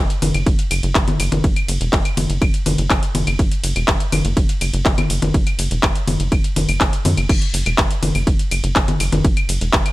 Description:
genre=melodic techno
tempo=123 BPM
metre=4/4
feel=straight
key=unclear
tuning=A4 = 440 Hz
part: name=tight sequencer bass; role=bass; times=0.0-9.8 s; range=E1 to F#2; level=-20 LUFS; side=equal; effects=sidechain pumping
part: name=techno drum kit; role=drums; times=0.1-9.9 s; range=claves, congas, crash cymbal, handclaps, hi-hat, ride cymbal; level=-20 LUFS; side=left 1 dB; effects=none
part: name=electronic kick drum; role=drums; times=0.5-9.8 s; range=none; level=-18 LUFS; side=equal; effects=overdrive
room=little or no reverb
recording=none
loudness=-15 LUFS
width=side -18 dB against mid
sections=0.0-7.3 A section; 7.3-9.9 A section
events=drop 0.0-7.3, 7.3-9.9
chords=none

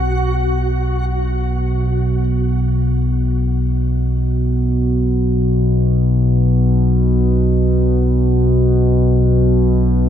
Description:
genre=ambient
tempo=free time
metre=none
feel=none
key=unclear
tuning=A4 = 440 Hz
part: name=deep rumbling drone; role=drone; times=0.0-10.1 s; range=B1 to B2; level=-14 LUFS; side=equal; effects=built-in reverb
room=moderate huge ambient reverb, RT60 8.1 s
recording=none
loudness=-14 LUFS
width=side -9 dB against mid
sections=0.0-10.1 A section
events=none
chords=none

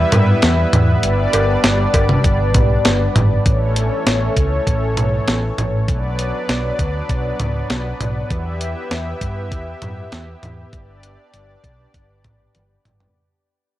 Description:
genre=synth-pop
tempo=99 BPM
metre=4/4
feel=straight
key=unclear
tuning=A4 = 440 Hz
part: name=lush unison pad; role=sustained chords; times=0.0-13.1 s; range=E3 to E5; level=-21 LUFS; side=left 1 dB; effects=chorus, shimmer reverb
part: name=hollow-body short-scale fingered electric bass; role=bass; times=0.0-13.1 s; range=G1 to G2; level=-20 LUFS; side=equal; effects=none
part: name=clean 12-bit digital drum machine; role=drums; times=0.1-13.1 s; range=cowbell, hi-hat, kick drum, snare drum, toms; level=-18 LUFS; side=equal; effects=none
room=light reverb, digital ambience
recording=dry, gritty hardware recording, cassette tape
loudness=-15 LUFS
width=side -14 dB against mid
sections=0.0-3.5 A section; 3.5-13.2 B section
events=fade-out 3.5-13.2; drum fill 12.5-13.2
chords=0.0 Em; 1.0 G; 3.5 A; 5.9 Bm; 8.3 Em; 10.7 G

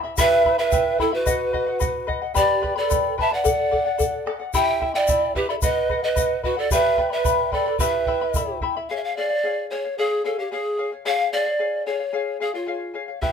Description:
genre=andean folk, Andean ensemble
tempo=110 BPM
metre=2/4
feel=straight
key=unclear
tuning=A4 = 440 Hz
part: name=charango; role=accompaniment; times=0.0-13.3 s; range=E4 to B5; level=-25 LUFS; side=left 7 dB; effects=none
part: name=breathy mellow polished pan flute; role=melody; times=0.2-13.3 s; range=E#4 to A5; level=-23 LUFS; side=equal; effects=none
part: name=breathy mellow pan flute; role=second line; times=0.2-8.6 s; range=E4 to E5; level=-24 LUFS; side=right 6 dB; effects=none
part: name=bombo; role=percussion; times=0.2-8.7, 13.2-13.3 s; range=none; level=-28 LUFS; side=right 2 dB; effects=none
part: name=egg shaker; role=percussion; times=0.2-8.5 s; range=none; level=-31 LUFS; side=left 8 dB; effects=none
room=moderate studio reverb, RT60 0.5 s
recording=minimal, uncompressed stereo recording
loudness=-20 LUFS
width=side -7 dB against mid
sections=0.2-8.9 A section; 8.9-13.3 B section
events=none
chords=0.2 Em; 1.3 B; 2.4 G; 3.4 D; 4.5 Em; 5.6 B; 6.7 G; 7.8 Em; 8.9 C#

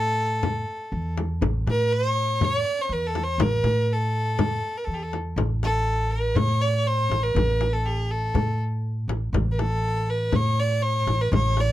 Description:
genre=Arabic maqam ensemble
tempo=121 BPM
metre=4/4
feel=straight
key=A maqam huzam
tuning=A4 = 440 Hz
part: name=clear violin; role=melody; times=0.0-11.7 s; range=G4+49c to D5-38c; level=-25 LUFS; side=equal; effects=none
part: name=upright bass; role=bass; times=0.0-11.7 s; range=A1 to A2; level=-25 LUFS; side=equal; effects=none
part: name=frame drum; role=percussion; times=0.4-11.7 s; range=none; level=-27 LUFS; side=left 3 dB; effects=none
room=light reverb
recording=dark, warm production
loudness=-22 LUFS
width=side -14 dB against mid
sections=0.0-5.4 A section; 5.4-11.7 B section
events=none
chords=none

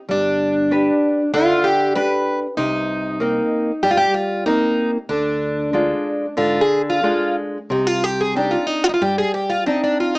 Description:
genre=fado-style ballad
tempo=95 BPM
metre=4/4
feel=rubato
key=C minor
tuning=A4 = 440 Hz
part: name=picked plugged-in twelve-string acoustic guitar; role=melody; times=0.1-10.2 s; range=D4 to B4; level=-18 LUFS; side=equal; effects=none
part: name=nylon-string guitar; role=accompaniment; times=0.1-10.2 s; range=C3 to B4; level=-20 LUFS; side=equal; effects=none
part: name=mellow fretless electric bass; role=bass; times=0.1-9.2 s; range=G1 to Ab2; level=-30 LUFS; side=equal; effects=none
room=moderate small room ambience, RT60 0.5 s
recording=small speaker sound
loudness=-16 LUFS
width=side -26 dB against mid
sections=0.0-10.2 A section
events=none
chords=0.1 G; 2.6 Cm7; 5.1 Ddim; 7.7 Cmadd9

